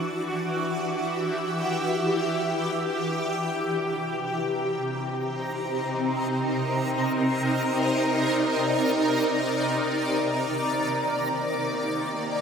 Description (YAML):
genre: ambient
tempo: free time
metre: none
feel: none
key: unclear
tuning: A4 = 440 Hz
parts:
  - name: shimmering ambient pad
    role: sustained chords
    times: 0.0-12.4 s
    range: C3 to E5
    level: -24 LUFS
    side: equal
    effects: chorus, built-in reverb, phaser, shimmer reverb
  - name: backwards swelling texture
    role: texture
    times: 0.0-12.4 s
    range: Bb5 to D6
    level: -34 LUFS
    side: right 1 dB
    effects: built-in reverb, shimmer reverb
room: wet huge ambient reverb, RT60 8.9 s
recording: none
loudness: -24 LUFS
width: side -6 dB against mid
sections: 0.0-12.4 A section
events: fade-in on synth texture 0.0-12.4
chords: 0.0 Em7; 3.4 Cm7; 9.9 Ebmaj7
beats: free time